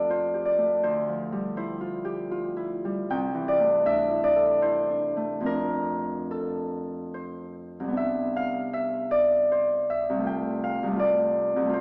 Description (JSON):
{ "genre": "classical, solo harp piece", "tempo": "68-84 BPM", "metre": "3/4", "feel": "rubato", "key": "F major, C major from 8.0 s", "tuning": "A4 = 444 Hz", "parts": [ { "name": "Celtic harp", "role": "solo", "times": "0.0-11.8 s", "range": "C2 to G5", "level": "-26 LUFS", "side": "equal", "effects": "none" } ], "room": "wet scoring stage reverb, RT60 2.1 s", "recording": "none", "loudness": "-26 LUFS", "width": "mono", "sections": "0.0-8.0 A section; 8.0-11.8 B section", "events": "none", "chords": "0.0 Fadd9; 0.8 Dm11; 3.1 C69; 5.4 F6; 8.0 Cmaj9; 10.3 G9sus4/C" }